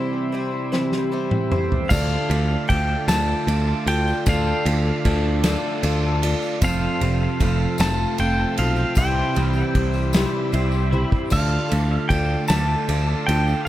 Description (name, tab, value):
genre	folk rock and heartland rock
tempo	51 BPM (dotted quarters)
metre	6/8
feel	straight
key	D minor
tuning	A4 = 440 Hz
part	picked twelve-string acoustic guitar	accompaniment	0.0-13.7 s	C3 to C5	-26 LUFS	left 4 dB	tape echo
part	bright tonewheel organ	sustained chords	0.0-13.6 s	G3 to F5	-35 LUFS	left 1 dB	slow rotary speaker
part	twelve-string electric guitar	riff	0.0-13.7 s	F2 to F4	-27 LUFS	right 5 dB	analog chorus, tape echo
part	unplugged drum kit	drums	0.7-13.5 s	crash cymbal, kick drum, ride cymbal, snare drum, toms	-25 LUFS	equal	none
part	pedal steel guitar	melody	1.9-13.7 s	F5 to A5	-26 LUFS	right 1 dB	tape echo
part	modern bright picked electric bass	bass	1.9-13.5 s	F1 to D2	-22 LUFS	equal	none
part	tambourine	percussion	1.9-13.6 s	none	-39 LUFS	left 7 dB	tape echo
room	light reverb, small room ambience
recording	echo-heavy mix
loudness	-18 LUFS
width	side -13 dB against mid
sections	0.0-1.9 A section; 1.9-13.7 B section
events	break 0.0-1.9; drum fill 0.7-1.9, 10.9-11.3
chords	0.0 C; 1.9 Dm; 6.6 F; 9.0 C; 11.3 Dm